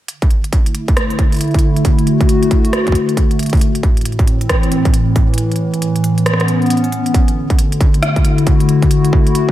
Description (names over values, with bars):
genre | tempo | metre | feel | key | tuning
IDM | 136 BPM | 4/4 | swing 62% on 16ths | unclear | A4 = 440 Hz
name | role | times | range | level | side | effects
hollow soft pad | sustained chords | 0.7-9.5 s | A2 to F#4 | -15 LUFS | left 1 dB | chorus
industrial drum kit | drums | 0.1-9.5 s | hi-hat, rim click | -22 LUFS | right 1 dB | overdrive
electronic kick drum | drums | 0.2-9.5 s | none | -13 LUFS | equal | distortion, overdrive
room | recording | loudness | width
moderate lush hall reverb, RT60 1.5 s | dreamy mix soaked in reverb | -12 LUFS | side -14 dB against mid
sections
0.1-7.1 A section; 7.1-9.5 B section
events
kick drops out 5.4-7.1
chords
0.1 D; 3.6 Am; 5.4 A; 7.1 D